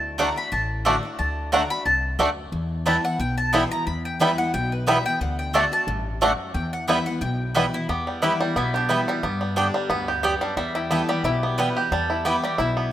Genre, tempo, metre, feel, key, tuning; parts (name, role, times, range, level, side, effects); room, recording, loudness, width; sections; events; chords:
bluegrass; 179 BPM; 4/4; swing 54% on 8ths; E minor; A4 = 439 Hz
mandolin; melody; 0.0-12.9 s; B3 to C6; -27 LUFS; equal
picked steel-string acoustic guitar; accompaniment; 0.0-12.9 s; E2 to G4; -30 LUFS; left 2 dB
upright bass; bass; 0.0-12.9 s; A1 to G2; -29 LUFS; left 1 dB
bluegrass banjo; arpeggios; 0.2-12.9 s; G3 to G4; -25 LUFS; equal
mandolin; stabs; 0.2-12.4 s; A3 to G5; -26 LUFS; right 2 dB
light reverb, studio ambience; rough home demo mix; -20 LUFS; side -12 dB against mid
0.0-7.9 A section; 7.9-12.9 B section
mandolin solo 0.0-7.9
0.0 D; 2.5 Em; 5.2 D; 6.5 Em; 9.2 G; 10.6 Em